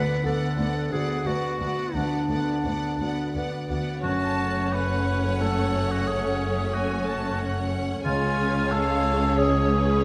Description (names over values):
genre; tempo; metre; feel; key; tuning
cinematic, emotional film score for orchestra; 85-92 BPM; 3/4; rubato; F# minor; A4 = 441 Hz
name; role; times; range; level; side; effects
dark studio violin section; melody; 0.0-10.0 s; C#5 to F#5; -36 LUFS; equal; none
clear clarinet; second line; 0.0-3.7 s; D4 to B4; -31 LUFS; equal; none
rich studio violin section; second line; 0.0-10.0 s; B4 to A5; -39 LUFS; equal; none
warm concert grand piano; accompaniment; 0.0-10.0 s; C#2 to C#5; -32 LUFS; equal; none
warm studio viola section; accompaniment; 0.0-10.0 s; A3 to G#4; -34 LUFS; equal; none
warm studio cello section; bass; 0.2-10.0 s; C#2 to F#2; -33 LUFS; equal; none
warm studio double bass section; bass; 0.2-10.0 s; F#1 to D2; -34 LUFS; equal; none
warm oboe; second line; 4.0-10.0 s; E#4 to B4; -30 LUFS; equal; none
room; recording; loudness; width
moderate scoring stage reverb, RT60 1.9 s; none; -25 LUFS; mono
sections
0.0-4.0 A section; 4.0-10.0 A section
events
none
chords
0.0 Bm/D; 4.0 F#m; 8.1 C#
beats
0.58 1.26 | 1.95 2.65 3.35 | 4.05 4.74 5.42 | 6.08 6.74 7.40 | 8.06 8.72 9.38